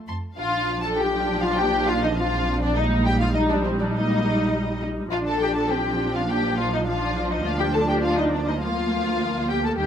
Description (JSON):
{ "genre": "quick classical-period movement for string orchestra", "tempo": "102 BPM", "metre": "4/4", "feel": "straight", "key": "Bb major", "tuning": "A4 = 442 Hz", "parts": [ { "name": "muted symphonic viola section", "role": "accompaniment", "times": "0.0-9.9 s", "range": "Eb3 to Eb4", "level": "-27 LUFS", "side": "right 1 dB", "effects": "none" }, { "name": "muted symphonic violin section", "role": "melody", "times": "0.1-9.9 s", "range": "C5 to C6", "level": "-31 LUFS", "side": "left 3 dB", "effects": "none" }, { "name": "muted symphonic violin section", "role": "second line", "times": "0.1-9.9 s", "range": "C4 to C6", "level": "-24 LUFS", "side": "left 2 dB", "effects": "none" }, { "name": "muted symphonic double bass section", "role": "bass", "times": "0.1-9.9 s", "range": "Bb1 to F2", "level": "-28 LUFS", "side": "right 2 dB", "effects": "none" }, { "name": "muted symphonic cello section", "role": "bass", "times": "1.6-9.9 s", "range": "G3 to Eb4", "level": "-28 LUFS", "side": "right 2 dB", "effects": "none" } ], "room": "moderate large studio reverb, RT60 1.2 s", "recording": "none", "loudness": "-20 LUFS", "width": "side -9 dB against mid", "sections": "0.4-9.9 A section", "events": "none", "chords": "0.4 Bb; 2.8 Eb/Bb; 5.1 Bb; 7.4 Bb/D", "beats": "| 0.38 0.98 1.57 2.16 | 2.76 3.35 3.94 4.53 | 5.11 5.70 6.28 6.86 | 7.44 8.03 8.61 9.20 | 9.78" }